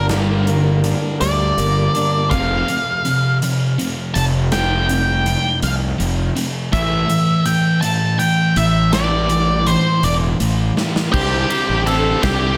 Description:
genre	quiet-loud alternative rock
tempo	54 BPM (dotted quarters)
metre	6/8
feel	straight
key	unclear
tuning	A4 = 439 Hz
part	octave-fuzz lead guitar	melody	0.0-12.6 s	G4 to A5	-22 LUFS	equal	distortion, analog delay
part	electric guitar through a small old amp	arpeggios	0.0-2.3 s	G2 to D4	-26 LUFS	equal	harmonic tremolo
part	thick fuzz guitar	riff	0.0-12.6 s	F2 to C5	-21 LUFS	equal	distortion
part	fuzz fingered electric bass	bass	0.0-12.6 s	E1 to D2	-23 LUFS	equal	overdrive
part	huge arena drum kit	drums	0.1-12.4 s	crash cymbal, hi-hat, kick drum, ride cymbal, snare drum	-27 LUFS	equal	none
part	percussive tonewheel organ	sustained chords	11.1-12.6 s	D3 to D4	-31 LUFS	equal	none
room	light reverb, studio ambience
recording	none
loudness	-17 LUFS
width	mono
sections	0.0-11.1 A section; 11.1-12.6 B section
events	half time 0.0-11.1; lead electric guitar solo 0.0-11.1; drum fill 10.8-11.1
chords	0.0 Gm; 2.3 Fsus2; 6.7 A5; 11.1 Cadd9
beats	| 0.10 1.21 | 2.31 3.42 | 4.52 5.63 | 6.73 7.83 | 8.93 10.03 | 11.13 12.23

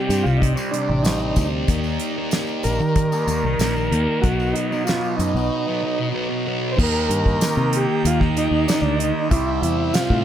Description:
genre	psychedelic rock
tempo	94 BPM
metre	4/4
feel	straight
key	unclear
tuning	A4 = 440 Hz
part	overdriven combo organ	melody	0.0-10.2 s	D4 to C5	-24 LUFS	equal	digital delay
part	pedal harmonium	sustained chords	0.0-10.2 s	F#3 to G5	-31 LUFS	right 5 dB	none
part	thick fuzz guitar	riff	0.0-10.2 s	B2 to Eb4	-23 LUFS	equal	distortion, phaser
part	fingered electric bass	bass	0.1-10.2 s	A1 to Eb3	-23 LUFS	equal	none
part	damped 70s drum kit	drums	0.1-10.2 s	crash cymbal, hi-hat, kick drum, snare drum	-22 LUFS	equal	none
part	tambourine	percussion	0.1-10.1 s	none	-36 LUFS	left 9 dB	none
room	small room ambience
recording	none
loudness	-18 LUFS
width	side -10 dB against mid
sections	0.0-6.8 A section; 6.8-10.2 B section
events	break 5.5-6.8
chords	0.0 C5; 1.7 Eb; 4.2 B; 6.8 Eb; 9.3 C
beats	0.42 1.06 | 1.69 2.33 2.96 3.60 | 4.24 4.87 5.51 6.14 | 6.78 7.41 8.04 8.67 | 9.31 9.94

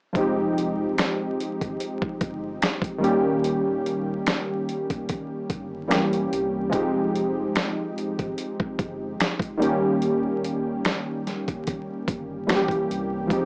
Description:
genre	lo-fi hip hop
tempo	73 BPM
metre	4/4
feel	swing 56% on 16ths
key	F minor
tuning	A4 = 441 Hz
part	warm analog keys	accompaniment	0.1-13.5 s	Eb3 to G4	-24 LUFS	equal	chorus, low-pass filter
part	dusty soul sampler-style drum kit	drums	0.1-13.5 s	finger snaps, hi-hat, kick drum, snare drum	-25 LUFS	equal	none
part	sub bass with octave	bass	0.2-13.5 s	Eb1 to C2	-42 LUFS	equal	transformer saturation
room	light reverb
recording	dry, gritty hardware recording, vinyl crackle, small speaker sound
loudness	-23 LUFS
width	side -34 dB against mid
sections	0.1-13.5 A section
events	none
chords	0.1 Fm9; 3.0 Eb7; 5.9 Edim7; 6.7 Fm9; 9.6 Eb7; 12.5 Edim7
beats	| 0.15 0.97 1.79 2.62 | 3.44 4.26 5.08 5.90 | 6.72 7.55 8.37 9.19 | 10.01 10.83 11.66 12.48 | 13.30

